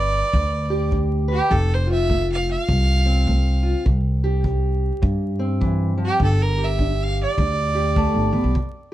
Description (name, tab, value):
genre	acoustic country blues, solo or duo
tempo	102 BPM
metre	4/4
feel	swing 62% on 8ths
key	unclear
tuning	A4 = 440 Hz
part	clear fiddle	melody	0.0-8.5 s	G4 to F5	-24 LUFS	right 2 dB	plate reverb
part	fingerpicked steel-string acoustic guitar	accompaniment	0.0-8.9 s	C3 to B4	-25 LUFS	equal	none
part	upright bass	bass	0.0-8.5 s	F1 to G2	-20 LUFS	equal	none
part	kick drum	drums	0.3-8.7 s	none	-24 LUFS	equal	none
room	light reverb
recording	dark, warm production, vinyl crackle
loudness	-18 LUFS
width	side -14 dB against mid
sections	0.0-8.5 A section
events	fiddle solo 0.0-8.9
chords	0.0 G; 1.5 F; 3.9 C; 6.2 G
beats	0.33 0.92 | 1.51 2.09 2.68 3.27 | 3.85 4.44 5.02 5.61 | 6.20 6.78 7.37 7.96 | 8.54